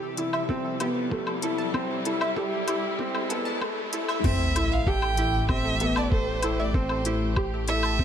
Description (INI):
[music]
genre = piano and strings electronica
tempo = 96 BPM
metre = 4/4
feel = straight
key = A minor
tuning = A4 = 438 Hz
[part]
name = rich chamber string section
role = sustained chords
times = 0.0-8.0 s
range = A2 to A4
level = -33 LUFS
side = left 2 dB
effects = sidechain pumping
[part]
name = clear upright piano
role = riff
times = 0.0-8.0 s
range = A3 to G4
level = -30 LUFS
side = left 1 dB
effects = ping-pong delay
[part]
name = dark detuned saw bass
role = bass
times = 0.0-8.0 s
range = A1 to C2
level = -32 LUFS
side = equal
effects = sidechain pumping, high-pass filter
[part]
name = riser and sub drop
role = sound effects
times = 0.0-6.7 s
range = none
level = -34 LUFS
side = equal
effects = none
[part]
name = analog pluck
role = arpeggios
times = 0.2-8.0 s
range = G4 to A5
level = -34 LUFS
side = right 2 dB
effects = chorus, cassette tape, sidechain pumping, ping-pong delay
[part]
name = organic electronic drum kit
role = drums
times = 0.2-8.0 s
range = crash cymbal, hi-hat, woodblock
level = -34 LUFS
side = left 3 dB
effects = none
[part]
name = electronic kick drum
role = drums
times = 0.5-8.0 s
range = none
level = -26 LUFS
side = equal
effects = none
[part]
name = dark violin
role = melody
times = 4.3-8.0 s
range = C5 to G5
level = -29 LUFS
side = right 3 dB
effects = none
[sound]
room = moderate echo chamber reverb, RT60 2.3 s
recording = high-pass filter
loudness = -24 LUFS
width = side -8 dB against mid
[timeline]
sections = 0.0-4.2 A section; 4.2-8.0 B section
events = build-up 0.0-4.2; riser 0.0-4.2; filter sweep on synth arpeggio sound 0.0-4.2; filter sweep 0.0-4.2; drop 4.2-8.0; impact 4.2-6.7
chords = 0.0 C; 4.2 Am7